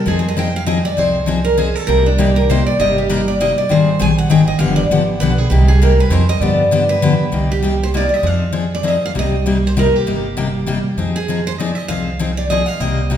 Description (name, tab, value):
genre	acoustic string swing (jazz manouche)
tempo	198 BPM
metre	3/4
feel	swing 58% on 8ths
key	C minor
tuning	A4 = 442 Hz
part	picked steel-string acoustic guitar	melody	0.0-13.1 s	D4 to Ab5	-18 LUFS	right 1 dB	none
part	picked steel-string acoustic guitar	accompaniment	0.1-13.2 s	C3 to Ab4	-17 LUFS	left 3 dB	none
part	upright bass	bass	0.1-13.2 s	G1 to G2	-19 LUFS	right 1 dB	none
room	wet recital hall reverb, RT60 1.5 s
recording	recorded in a church or concert hall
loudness	-13 LUFS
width	side -10 dB against mid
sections	0.0-7.3 A section; 7.3-13.2 B section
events	steel-string acoustic guitar solo 0.0-7.3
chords	0.1 Fm7; 1.9 Cm7; 3.7 Abmaj7; 4.6 G7; 5.5 Cm7; 6.1 Fm7; 6.4 G7; 7.3 Cm7; 8.2 Fm7; 9.2 Cm7; 11.0 Fm7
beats	| 0.07 0.37 0.67 | 0.97 1.28 1.58 | 1.88 2.18 2.49 | 2.79 3.09 3.39 | 3.70 4.00 4.30 | 4.60 4.91 5.21 | 5.51 5.81 6.12 | 6.42 6.72 7.02 | 7.33 7.63 7.93 | 8.24 8.54 8.85 | 9.15 9.45 9.76 | 10.06 10.37 10.67 | 10.97 11.28 11.58 | 11.89 12.19 12.49 | 12.80 13.10